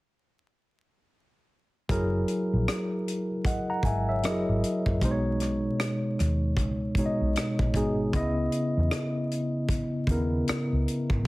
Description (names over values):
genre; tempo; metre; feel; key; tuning
R&B, neo-soul; 77 BPM; 4/4; swing 60% on 16ths; C# dorian; A4 = 440 Hz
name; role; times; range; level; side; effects
tine electric piano; accompaniment; 1.9-11.3 s; B2 to A#5; -27 LUFS; equal; medium stereo tremolo
vintage muted fingered electric bass; bass; 1.9-11.3 s; F#1 to E2; -28 LUFS; equal; none
tight funk drum kit; drums; 1.9-11.2 s; hi-hat, kick drum, rim click; -30 LUFS; equal; none
room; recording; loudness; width
light reverb; heavily compressed radio sound, vinyl crackle; -25 LUFS; side -20 dB against mid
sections
1.9-11.3 A section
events
none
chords
1.9 F#9; 5.0 B69; 8.1 C#m9